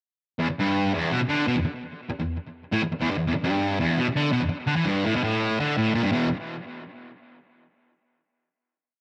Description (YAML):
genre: rock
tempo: 167 BPM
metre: 4/4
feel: straight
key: unclear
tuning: A4 = 440 Hz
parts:
  - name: fuzz guitar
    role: solo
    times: 0.4-6.3 s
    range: E2 to E3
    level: -25 LUFS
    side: equal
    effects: distortion, cassette tape, tape echo
room: light reverb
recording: home recording on cassette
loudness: -25 LUFS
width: mono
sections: 0.4-6.1 riff; 6.1-7.6 final chord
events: none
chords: 0.4 E5